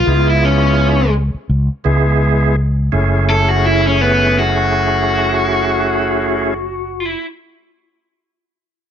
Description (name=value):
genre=straight-eighth soul blues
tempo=84 BPM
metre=4/4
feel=swing 56% on 16ths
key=F# minor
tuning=A4 = 440 Hz
part: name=overdriven electric guitar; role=melody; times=0.0-7.3 s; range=B3 to A4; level=-16 LUFS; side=left 2 dB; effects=none
part: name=fretless electric bass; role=bass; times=0.0-7.1 s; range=F#1 to C#2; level=-16 LUFS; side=equal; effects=none
part: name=bright tonewheel organ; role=accompaniment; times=0.1-6.5 s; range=G#3 to G#4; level=-18 LUFS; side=right 3 dB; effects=slow rotary speaker, overdrive
room=moderate club reverb, RT60 0.7 s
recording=nothing above 7.9 kHz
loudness=-12 LUFS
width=side -9 dB against mid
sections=0.0-2.9 A section; 2.9-5.8 B section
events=none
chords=0.1 C#7#9; 2.9 F#m7